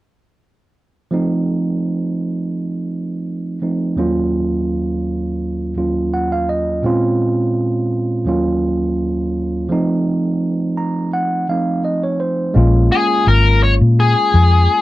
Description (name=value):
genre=straight-eighth soul blues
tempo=84 BPM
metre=4/4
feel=straight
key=Bb minor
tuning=A4 = 438 Hz
part: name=overdriven tine electric piano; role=accompaniment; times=1.1-14.8 s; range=Eb2 to Bb5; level=-17 LUFS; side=right 2 dB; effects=none
part: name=vintage muted fingered electric bass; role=bass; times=12.6-14.7 s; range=Ab1 to Bb2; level=-11 LUFS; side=left 1 dB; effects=none
part: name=smooth overdriven lead guitar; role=melody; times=12.9-14.8 s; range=Ab4 to Db5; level=-14 LUFS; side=left 4 dB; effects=none
room=light reverb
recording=dry, close 1970s-style studio recording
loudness=-15 LUFS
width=side -16 dB against mid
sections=1.1-12.6 A section; 12.6-14.8 B section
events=tine electric piano fill 5.8-6.8, 10.4-12.6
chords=1.1 F7; 4.0 Ebm9; 6.8 Bbm9; 8.3 Ebm9; 9.7 F7; 12.6 Bbm7